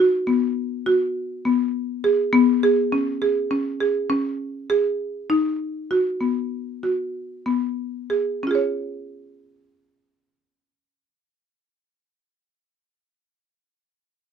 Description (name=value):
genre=contemporary instrumental, contemporary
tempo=91-102 BPM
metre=5/4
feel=straight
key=Db mixolydian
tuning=A4 = 439 Hz
part: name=buzzing marimba with hard mallets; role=arpeggios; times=0.0-12.8 s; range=Cb4 to Db5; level=-20 LUFS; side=equal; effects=none
room=moderate studio reverb, RT60 0.6 s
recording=minimal, uncompressed stereo recording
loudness=-20 LUFS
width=side -7 dB against mid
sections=0.0-8.4 A section; 8.4-11.7 B section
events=slowing down 3.5-8.4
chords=0.0 Cb5; 2.3 Db5; 5.3 Cb; 8.4 Db